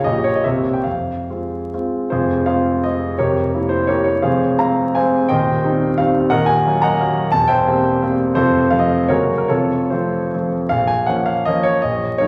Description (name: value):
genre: classical, romantic triple-time dance for piano with dotted rhythms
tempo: 132-188 BPM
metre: 3/4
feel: rubato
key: F minor, Bb minor from 6.3 s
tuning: A4 = 439 Hz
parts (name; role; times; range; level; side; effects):
- clear grand piano; solo; 0.0-12.3 s; Eb1 to Bb5; -18 LUFS; equal; none
room: wet recital hall reverb, RT60 1.4 s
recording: vinyl crackle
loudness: -18 LUFS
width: mono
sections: 0.0-2.1 A section; 2.1-10.7 B section; 10.7-12.3 A section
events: none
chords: 0.1 Eb9/Bb; 0.4 C7; 0.9 Fm; 3.2 Edim7/F; 4.2 Fm; 5.3 Cm/Eb; 6.3 Ebm; 7.3 C7/E; 8.4 F; 9.1 Gb; 9.5 F; 10.7 Bbm